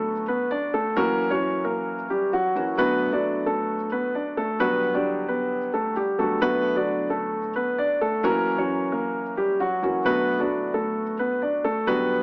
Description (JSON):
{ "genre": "hip hop", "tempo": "132 BPM", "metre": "4/4", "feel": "half-time", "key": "B minor", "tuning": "A4 = 440 Hz", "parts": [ { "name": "warm concert grand piano", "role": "melody", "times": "0.0-12.2 s", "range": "F#3 to D5", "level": "-26 LUFS", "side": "equal", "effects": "none" }, { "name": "felt-muted upright piano", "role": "accompaniment", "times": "0.0-12.2 s", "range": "D3 to G4", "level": "-30 LUFS", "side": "equal", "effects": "none" } ], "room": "light reverb, studio reverb", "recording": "worn, warbling old tape, cassette tape, warbly pitch drift, small speaker sound", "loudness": "-25 LUFS", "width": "mono", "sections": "0.0-2.8 A section; 2.8-12.2 B section", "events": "none", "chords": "0.0 Bm7; 1.0 F#7; 2.8 Bm7; 4.6 Gmaj7; 6.4 Bm7; 8.2 F#7; 10.1 Bm7" }